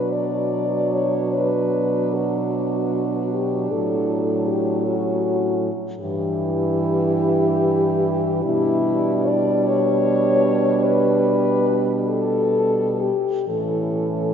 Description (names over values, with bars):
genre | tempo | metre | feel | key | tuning
classical, lyrical piece for horn quartet | 40-54 BPM (dotted quarters) | 12/8 | rubato | B minor | A4 = 440 Hz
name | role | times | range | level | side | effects
mellow French horn | melody | 0.0-14.3 s | E4 to D5 | -22 LUFS | left 4 dB | none
warm French horn | second line | 0.0-14.3 s | C#4 to E4 | -26 LUFS | right 8 dB | none
mellow French horn | accompaniment | 0.0-14.3 s | E3 to G3 | -25 LUFS | left 1 dB | none
mellow French horn | bass | 0.0-14.3 s | G2 to B2 | -25 LUFS | right 2 dB | none
room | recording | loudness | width
wet church reverb, RT60 2.9 s | nothing above 7.5 kHz | -18 LUFS | side -8 dB against mid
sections
0.0-14.3 A section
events
none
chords
0.0 Bm; 3.7 F#m/A; 6.0 Em/G; 8.5 G/B; 13.5 A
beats
0.12 1.34 2.55 | 3.71 4.86 6.01 7.13 | 8.45 9.68 10.85 12.10 | 13.49